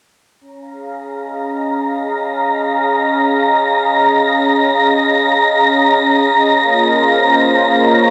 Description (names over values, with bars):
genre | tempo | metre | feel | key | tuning
ambient | free time | none | none | Db major | A4 = 440 Hz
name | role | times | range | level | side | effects
warm analog pad | sustained chords | 0.4-8.1 s | Bb3 to F5 | -18 LUFS | equal | chorus, shimmer reverb
wind-like tuned noise texture | texture | 1.2-8.1 s | Bb5 | -16 LUFS | equal | built-in reverb, shimmer reverb
room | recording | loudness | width
wet huge ambient reverb, RT60 8.3 s | dreamy mix soaked in reverb | -13 LUFS | mono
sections
0.4-8.1 A section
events
fade-in on analog synth pad 0.4-8.1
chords
0.4 Db69; 6.6 Bbm11